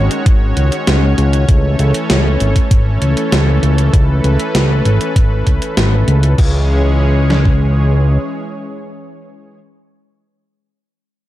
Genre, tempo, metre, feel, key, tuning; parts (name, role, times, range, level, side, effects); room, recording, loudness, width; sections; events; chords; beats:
synthwave; 98 BPM; 4/4; straight; C# minor; A4 = 440 Hz
brassy analog pad; sustained chords; 0.0-9.6 s; D#3 to C#5; -19 LUFS; equal; chorus, sidechain pumping
fat analog bass; bass; 0.0-8.2 s; G#1 to C#2; -12 LUFS; equal; sidechain pumping
gated 80s digital drum machine; drums; 0.1-6.5 s; crash cymbal, hi-hat, snare drum; -19 LUFS; equal; gated reverb, gated reverb snare
gated 80s digital drum machine; drums; 0.3-7.6 s; kick drum, snare drum; -12 LUFS; equal; gated reverb, gated reverb snare, overdrive
light reverb, digital ambience; dark, warm production; -11 LUFS; side -14 dB against mid
0.0-6.4 A section; 6.4-8.8 B section
0.0 C#sus2; 1.5 A; 6.4 C#m
0.26 0.87 | 1.49 2.10 2.71 3.32 | 3.94 4.55 5.16 5.77 | 6.38 7.00 7.61 8.22